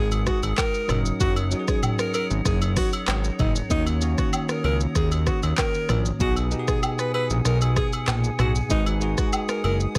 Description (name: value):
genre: afrobeats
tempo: 96 BPM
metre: 4/4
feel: straight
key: Eb minor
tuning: A4 = 440 Hz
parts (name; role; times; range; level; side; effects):
- clear alto saxophone; melody; 0.0-10.0 s; Eb4 to B4; -31 LUFS; equal; none
- bell-like tine electric piano; accompaniment; 0.0-10.0 s; B2 to Cb5; -31 LUFS; equal; none
- small flute group; sustained chords; 0.0-10.0 s; G#4 to D#6; -38 LUFS; equal; none
- fat analog bass; bass; 0.0-10.0 s; Gb1 to Eb2; -26 LUFS; equal; none
- afro-pop drum kit; drums; 0.1-10.0 s; handclaps, hi-hat, kick drum, rim click, shaker, toms; -28 LUFS; equal; none
- agogo bells and woodblock; percussion; 0.1-9.8 s; none; -35 LUFS; equal; none
room: digital ambience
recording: none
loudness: -23 LUFS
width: mono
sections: 0.0-10.0 A section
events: none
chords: 0.0 Abm7; 0.9 Gb6; 3.7 Ebm7; 6.2 B6; 8.7 Abm7